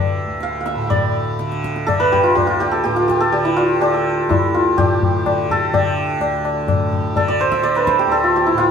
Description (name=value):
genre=indian classical, Hindustani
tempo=125 BPM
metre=5/4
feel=straight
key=D raga bhimpalasi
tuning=A4 = 441 Hz
part: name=santur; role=melody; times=0.0-8.7 s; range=E4 to E6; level=-17 LUFS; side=right 1 dB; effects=none
part: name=tanpura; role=drone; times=0.0-8.7 s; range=D2 to D3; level=-24 LUFS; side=right 2 dB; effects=none
part: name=tabla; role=percussion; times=0.4-8.7 s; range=none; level=-21 LUFS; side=left 5 dB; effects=none
room=wet studio reverb, RT60 0.6 s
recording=band playing live in one room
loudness=-15 LUFS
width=side -7 dB against mid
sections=0.9-8.7 A section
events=speeding up 0.0-8.7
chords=none